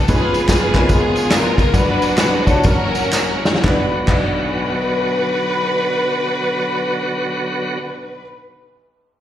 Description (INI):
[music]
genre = uptempo gospel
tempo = 113-150 BPM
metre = 4/4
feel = swing 64% on 8ths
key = B minor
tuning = A4 = 442 Hz
[part]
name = rich studio string section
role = melody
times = 0.0-8.2 s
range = B3 to B4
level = -20 LUFS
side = left 1 dB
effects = none
[part]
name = warm upright piano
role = accompaniment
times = 0.0-8.2 s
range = F#1 to D5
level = -23 LUFS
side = left 1 dB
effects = slapback echo
[part]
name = bright tonewheel organ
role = sustained chords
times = 0.0-7.8 s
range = D3 to G#4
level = -23 LUFS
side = right 2 dB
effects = slow rotary speaker, overdrive
[part]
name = swinging big-band drum kit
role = drums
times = 0.1-4.2 s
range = crash cymbal, kick drum, ride cymbal, snare drum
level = -17 LUFS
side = equal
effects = none
[part]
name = tambourine and handclaps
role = percussion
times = 0.1-4.2 s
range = none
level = -25 LUFS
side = right 2 dB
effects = slapback echo
[sound]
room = light reverb, studio reverb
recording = live gig heard through the venue's PA, recital hall reverb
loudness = -15 LUFS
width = side -11 dB against mid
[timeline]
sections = 0.0-3.6 A section; 3.6-7.9 B section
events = slowing down 0.1-3.6; drum fill 3.1-3.6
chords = 0.1 C#7; 1.7 Bm/F#; 2.6 F#; 3.6 Bm